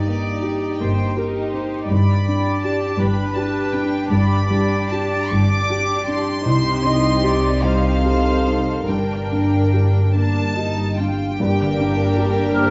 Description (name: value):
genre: cinematic, emotional film score for orchestra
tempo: 47-56 BPM (dotted quarters)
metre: 6/8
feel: rubato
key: G minor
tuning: A4 = 440 Hz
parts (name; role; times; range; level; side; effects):
- rich studio violin section; melody; 0.0-12.7 s; C5 to D6; -30 LUFS; equal; none
- dark studio violin section; second line; 0.0-12.7 s; D4 to Bb4; -29 LUFS; equal; none
- felt-muted upright piano; accompaniment; 0.0-12.7 s; C2 to G4; -26 LUFS; equal; none
- warm studio viola section; accompaniment; 0.0-12.7 s; G3 to Eb5; -29 LUFS; equal; none
- concert harp; arpeggios; 0.0-12.7 s; G2 to D5; -29 LUFS; equal; none
- dark studio double bass section; bass; 0.0-12.7 s; G1 to C2; -26 LUFS; equal; none
- warm studio cello section; bass; 0.0-12.7 s; G2 to C3; -26 LUFS; equal; none
- mellow French horn section; sustained chords; 11.4-12.7 s; Bb3 to D4; -28 LUFS; equal; none
- dark cor anglais; second line; 12.5-12.7 s; Bb4; -21 LUFS; equal; none
room: moderate scoring stage reverb, RT60 1.6 s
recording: vinyl crackle, nothing above 7.9 kHz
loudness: -19 LUFS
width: mono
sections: 0.0-11.4 A section; 11.4-12.7 A section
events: none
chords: 0.0 Eb/G; 1.9 G; 6.5 Cm; 8.9 Gm